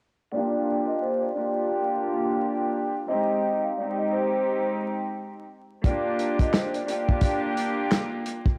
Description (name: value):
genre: hip hop, boom-bap hip-hop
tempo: 87 BPM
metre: 4/4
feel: swing 60% on 16ths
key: unclear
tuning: A4 = 440 Hz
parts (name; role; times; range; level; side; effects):
- vibraphone with soft mallets; melody; 0.3-7.4 s; C5 to F5; -31 LUFS; equal; high-pass filter, low-pass filter
- warm chamber string section; accompaniment; 0.3-8.5 s; Ab3 to G4; -29 LUFS; equal; cassette tape, high-pass filter, low-pass filter
- warm soul drum kit; drums; 5.8-8.6 s; handclaps, hi-hat, kick drum, snare drum; -26 LUFS; equal; none
room: moderate spring reverb, RT60 2.1 s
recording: home recording on cassette, vinyl crackle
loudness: -26 LUFS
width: mono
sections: 0.3-8.6 A section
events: filter sweep 0.3-8.6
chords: 0.3 Gm7; 3.1 Abmaj7; 5.8 Gm7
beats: | 0.32 1.01 1.70 2.39 | 3.08 3.77 4.46 5.15 | 5.84 6.53 7.22 7.91